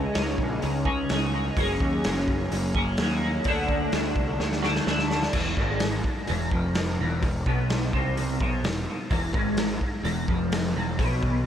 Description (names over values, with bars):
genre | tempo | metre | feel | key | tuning
psychedelic rock | 127 BPM | 4/4 | straight | unclear | A4 = 441 Hz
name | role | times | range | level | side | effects
twelve-string electric guitar | riff | 0.0-11.5 s | E2 to G#4 | -26 LUFS | equal | flanger, double-tracked left and right, tape echo
fuzz picked electric bass | bass | 0.0-11.4 s | E1 to D#2 | -30 LUFS | equal | overdrive
raw garage drum kit | drums | 0.1-11.3 s | crash cymbal, hi-hat, kick drum, snare drum | -28 LUFS | equal | tape echo
room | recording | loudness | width
light reverb, small room ambience | echo-heavy mix | -23 LUFS | side -10 dB against mid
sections
0.0-5.3 A section; 5.3-11.5 B section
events
drum fill 4.4-5.3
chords
0.0 C#sus2; 1.6 F#add9; 3.5 D; 5.3 E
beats
0.15 0.62 1.10 | 1.57 2.04 2.52 2.99 | 3.46 3.93 4.40 4.88 | 5.35 5.82 6.29 6.76 | 7.23 7.70 8.17 8.64 | 9.11 9.58 10.05 10.52 | 10.99